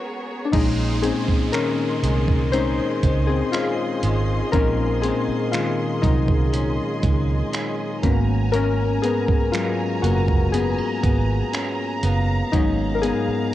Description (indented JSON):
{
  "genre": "contemporary R&B",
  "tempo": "60 BPM",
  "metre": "4/4",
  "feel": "straight",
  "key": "Bb minor",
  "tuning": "A4 = 440 Hz",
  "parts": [
    { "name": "warm analog keys", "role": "accompaniment", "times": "0.0-13.5 s", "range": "Gb3 to C5", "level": "-23 LUFS", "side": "left 5 dB", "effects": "chorus, cassette tape" },
    { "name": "bright studio string section", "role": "sustained chords", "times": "0.0-13.5 s", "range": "Cb4 to C6", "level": "-31 LUFS", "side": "right 1 dB", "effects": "cassette tape" },
    { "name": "clean electric guitar", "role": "arpeggios", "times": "0.5-13.5 s", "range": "Ab2 to Db4", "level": "-27 LUFS", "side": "right 2 dB", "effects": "cassette tape, tape echo" },
    { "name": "vintage muted fingered electric bass", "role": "bass", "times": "0.5-13.3 s", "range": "Gb1 to Db2", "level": "-22 LUFS", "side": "right 2 dB", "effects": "none" },
    { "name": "dusty soul sampler-style drum kit", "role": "drums", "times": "0.5-13.3 s", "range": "crash cymbal, finger snaps, hi-hat, kick drum", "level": "-23 LUFS", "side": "right 2 dB", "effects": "cassette tape" },
    { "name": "downlifter", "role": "sound effects", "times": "0.5-8.5 s", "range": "none", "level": "-39 LUFS", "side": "right 2 dB", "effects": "none" }
  ],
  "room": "light reverb, digital ambience",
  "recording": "home recording on cassette",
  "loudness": "-19 LUFS",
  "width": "side -13 dB against mid",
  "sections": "0.5-13.5 A section",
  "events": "synth keys solo 0.5-13.5",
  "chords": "0.0 Abm11; 0.5 Bbm11; 8.0 Abm11"
}